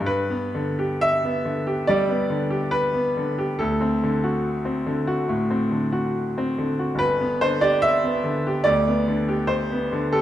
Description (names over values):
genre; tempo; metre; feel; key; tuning
classical, romantic character piece for solo piano; 71 BPM; 4/4; rubato; G major; A4 = 439 Hz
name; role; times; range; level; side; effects
bright grand piano; solo; 0.0-10.2 s; G1 to E5; -20 LUFS; equal; none
room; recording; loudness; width
wet recital hall reverb, RT60 1.7 s; dark, warm production; -20 LUFS; side -12 dB against mid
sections
0.1-10.2 A section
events
none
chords
0.1 G; 3.6 D7; 7.0 G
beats
| 0.06 1.00 1.87 2.72 | 3.59 4.44 5.29 6.15 | 7.00 7.84 8.67 9.51